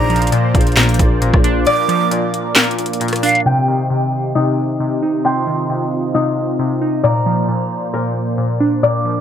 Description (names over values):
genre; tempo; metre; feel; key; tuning
hip hop, trap; 134 BPM; 4/4; half-time; C minor; A4 = 440 Hz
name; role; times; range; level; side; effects
breathy hollow jazz flute; second line; 0.0-9.2 s; F5 to D6; -22 LUFS; right 4 dB; tape echo
glassy digital keys; accompaniment; 0.0-9.2 s; Bb2 to Eb4; -18 LUFS; equal; chorus, low-pass filter
warm analog pad; sustained chords; 0.0-9.2 s; Bb2 to Eb5; -22 LUFS; equal; chorus
concert harp; arpeggios; 0.0-9.2 s; Eb4 to G5; -21 LUFS; left 5 dB; low-pass filter, tape echo
growling 808-style bass; bass; 0.0-1.7 s; A1 to Bb1; -19 LUFS; equal; none
trap drum kit; drums; 0.1-3.5 s; handclaps, hi-hat, kick drum, rim click, snare drum; -15 LUFS; equal; none
room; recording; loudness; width
light reverb; low-pass filter; -14 LUFS; side -9 dB against mid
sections
0.0-3.5 A section; 3.5-9.2 B section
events
kick muted 1.7-3.5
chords
0.0 Bbadd9; 3.5 Cm; 7.0 Bbadd9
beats
0.32 0.77 1.22 | 1.67 2.11 2.56 3.01 | 3.46 3.90 4.35 4.80 | 5.25 5.70 6.14 6.59 | 7.04 7.49 7.93 8.38 | 8.83